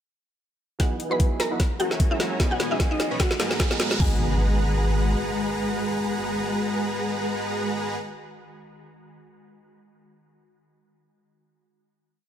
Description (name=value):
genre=future bass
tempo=150 BPM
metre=4/4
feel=swing 56% on 16ths, half-time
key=G# minor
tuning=A4 = 435 Hz
part: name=mallet-like synth pluck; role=melody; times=0.8-8.0 s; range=D#4 to B5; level=-30 LUFS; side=left 1 dB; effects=ensemble chorus, sidechain pumping, dub echo
part: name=dark grand piano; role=accompaniment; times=0.8-8.0 s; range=F#3 to G#4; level=-34 LUFS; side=right 4 dB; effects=sidechain pumping, dub echo
part: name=ethereal airy pad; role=sustained chords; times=1.5-8.0 s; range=D#3 to F#4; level=-37 LUFS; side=left 2 dB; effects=ensemble chorus, built-in reverb, sidechain pumping
part: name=dense compressed supersaw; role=riff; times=0.8-8.0 s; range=G#3 to B5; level=-28 LUFS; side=equal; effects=sidechain pumping, low-pass filter, dub echo
part: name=saturated sub bass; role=bass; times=0.8-5.2 s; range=E1 to B1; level=-25 LUFS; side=equal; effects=sidechain pumping, high-pass filter
part: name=electronic kick drum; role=drums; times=0.8-4.1 s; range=none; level=-23 LUFS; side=equal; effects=overdrive
part: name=trap drum kit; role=drums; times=0.8-4.1 s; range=crash cymbal, hi-hat, snare drum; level=-27 LUFS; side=equal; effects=none
part: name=riser and impact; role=sound effects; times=2.3-8.0 s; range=none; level=-34 LUFS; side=equal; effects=none
room=light reverb, digital ambience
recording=none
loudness=-22 LUFS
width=side -10 dB against mid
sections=0.8-4.0 build; 4.0-7.2 final chord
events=build-up 0.8-4.0; drum fill 0.8-4.0; filter sweep on supersaw synth 0.8-4.0; riser 2.3-4.0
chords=0.8 Emaj9; 1.6 F#9; 2.4 B69; 3.2 G#m9